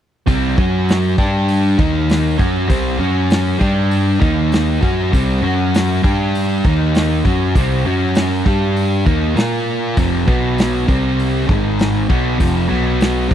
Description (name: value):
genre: blues rock power trio and southern rock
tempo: 99 BPM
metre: 4/4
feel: straight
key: unclear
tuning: A4 = 440 Hz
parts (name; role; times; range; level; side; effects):
- sludgy distorted guitar; riff; 0.3-13.3 s; F2 to Bb4; -17 LUFS; equal; overdrive
- picked electric bass; bass; 0.3-13.3 s; F1 to Bb2; -19 LUFS; equal; transformer saturation
- vintage drum kit; drums; 0.3-13.3 s; hi-hat, kick drum, snare drum; -18 LUFS; equal; none
room: small room ambience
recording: dry, close 1970s-style studio recording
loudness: -14 LUFS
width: side -10 dB against mid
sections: 0.3-13.3 A section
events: none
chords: 0.3 C5; 0.6 F#5; 1.2 G5; 1.8 Eb5; 2.4 C5; 3.0 F#5; 3.6 G5; 4.2 Eb5; 4.8 C5; 5.4 F#5; 6.0 G5; 6.6 Eb5; 7.2 C5; 7.9 F#5; 8.5 G5; 9.1 Eb5; 9.4 Bb5; 10.0 F5; 10.3 B5; 10.9 C5; 11.5 Ab5; 12.1 F5; 12.7 B5